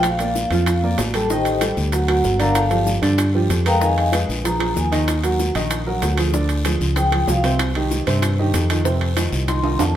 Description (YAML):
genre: Afro-Cuban jazz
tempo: 190 BPM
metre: 4/4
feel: straight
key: Bb major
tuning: A4 = 438 Hz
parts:
  - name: vibraphone with medium hard mallets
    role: melody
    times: 0.0-4.9, 7.0-7.4, 9.5-9.9 s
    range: G4 to C6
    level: -22 LUFS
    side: left 2 dB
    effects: none
  - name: fingered electric bass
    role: bass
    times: 0.0-10.0 s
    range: G1 to G2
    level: -21 LUFS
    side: equal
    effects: none
  - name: bongos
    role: percussion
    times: 0.0-10.0 s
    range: none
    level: -30 LUFS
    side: left 4 dB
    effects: none
  - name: guiro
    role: percussion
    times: 0.0-10.0 s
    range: none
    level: -33 LUFS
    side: left 4 dB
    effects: none
  - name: maracas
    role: percussion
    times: 0.0-10.0 s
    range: none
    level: -36 LUFS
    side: right 1 dB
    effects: none
  - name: timbales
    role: percussion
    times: 0.0-9.9 s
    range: none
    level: -28 LUFS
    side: right 4 dB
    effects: none
  - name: warm upright piano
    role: accompaniment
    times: 0.2-9.9 s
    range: C3 to F5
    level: -22 LUFS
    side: right 2 dB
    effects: none
room: wet stone room reverb, RT60 1.3 s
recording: band playing live in one room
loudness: -17 LUFS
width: side -11 dB against mid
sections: 0.0-10.0 A section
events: vibraphone solo 0.0-10.0; drum fill 9.6-10.0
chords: 0.0 Bb6; 1.3 Am7b5; 1.9 Daug; 2.6 Gm9; 3.8 Fm7b5; 4.5 Bb5; 5.1 Ebmadd9; 6.3 Ddim; 7.0 Db; 7.6 Cm; 8.9 F5